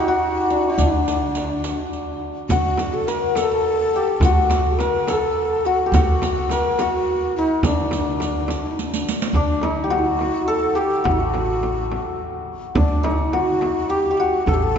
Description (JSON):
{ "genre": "Persian modal ensemble", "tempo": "70 BPM (dotted quarters)", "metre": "6/8", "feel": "straight", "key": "D dastgah chahargah", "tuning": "A4 = 439 Hz", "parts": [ { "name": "santur", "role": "melody", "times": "0.0-14.8 s", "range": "D4 to Bb4+45c", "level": "-22 LUFS", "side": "left 1 dB", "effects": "none" }, { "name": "breathy ney", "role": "second line", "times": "0.0-14.8 s", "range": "C#4 to B4-48c", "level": "-24 LUFS", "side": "left 2 dB", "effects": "none" }, { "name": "tombak", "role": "percussion", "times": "0.2-14.6 s", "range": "none", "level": "-28 LUFS", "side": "right 2 dB", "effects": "none" }, { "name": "riq", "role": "percussion", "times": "0.5-9.3 s", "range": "none", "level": "-31 LUFS", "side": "right 4 dB", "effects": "none" }, { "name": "upright bass", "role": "bass", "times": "0.8-14.8 s", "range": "A1 to D2", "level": "-25 LUFS", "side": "equal", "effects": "none" }, { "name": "frame drum", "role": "percussion", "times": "2.5-14.8 s", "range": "none", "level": "-29 LUFS", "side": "right 2 dB", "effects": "none" } ], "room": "wet cathedral reverb, RT60 5.1 s", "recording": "recorded in a church or concert hall, nothing above 7.8 kHz", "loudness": "-18 LUFS", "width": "side -7 dB against mid", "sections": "0.0-9.3 A section; 9.3-14.8 B section", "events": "drum fill 8.8-9.3", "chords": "none" }